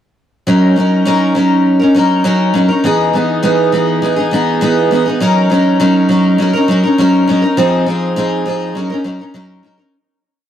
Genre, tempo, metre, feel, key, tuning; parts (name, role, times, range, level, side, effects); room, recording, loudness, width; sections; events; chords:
indie pop; 102 BPM; 4/4; straight; A4 = 440 Hz
picked steel-string acoustic guitar; solo; 0.5-9.9 s; E3 to Bb4; -10 LUFS; equal; wide subtle chorus, warbly pitch drift, analog delay
light reverb; dry, gritty hardware recording; -10 LUFS; side -10 dB against mid
0.5-9.9 A section
fade-out 7.6-9.9
0.5 Gb6; 2.8 Emaj7; 5.2 Gb6; 7.6 Fm7; 8.8 Gb6